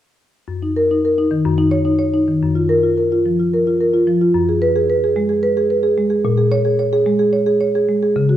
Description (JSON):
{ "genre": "classical, contemporary piece for solo marimba", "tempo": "219 BPM (eighths)", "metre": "7/8", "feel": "rubato", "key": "Gb major", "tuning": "A4 = 440 Hz", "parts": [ { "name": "marimba with soft mallets", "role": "solo", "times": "0.5-8.4 s", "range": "Gb2 to Db5", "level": "-14 LUFS", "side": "equal", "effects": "none" } ], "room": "wet recital hall reverb, RT60 1.4 s", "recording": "none", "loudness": "-14 LUFS", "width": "side -12 dB against mid", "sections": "0.5-2.4 A section; 2.4-8.4 B section", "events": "none", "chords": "0.5 Gb6; 1.4 Ebm7/Gb; 2.4 Gbmaj7; 4.4 Abm7/Gb; 6.2 Bbm7" }